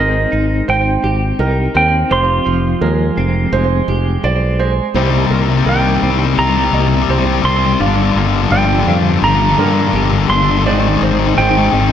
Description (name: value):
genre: rock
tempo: 84 BPM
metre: 4/4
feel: straight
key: C minor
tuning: A4 = 440 Hz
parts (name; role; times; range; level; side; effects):
- clean lap steel guitar; melody; 0.0-11.9 s; Eb5 to C6; -17 LUFS; right 3 dB; slapback echo
- pedal steel guitar; sustained chords; 0.0-11.9 s; Ab3 to D5; -27 LUFS; right 3 dB; wide subtle chorus
- felt-muted upright piano; arpeggios; 0.0-11.9 s; Bb4 to F5; -22 LUFS; right 7 dB; slapback echo
- twelve-string electric guitar; arpeggios; 0.0-11.9 s; F2 to G4; -20 LUFS; equal; tremolo, slapback echo
- fingered electric bass; bass; 0.0-11.9 s; F1 to G2; -16 LUFS; equal; none
- thick fuzz guitar; riff; 5.0-11.9 s; G2 to G3; -15 LUFS; left 9 dB; distortion
room: moderate concert hall reverb, RT60 1.9 s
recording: none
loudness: -12 LUFS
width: side -9 dB against mid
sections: 0.0-5.0 A section; 5.0-11.9 B section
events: build-up 5.0-11.9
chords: 0.0 Abmaj7; 2.1 Fmadd9; 5.0 Cm7; 7.8 Gm7; 10.7 Abmaj7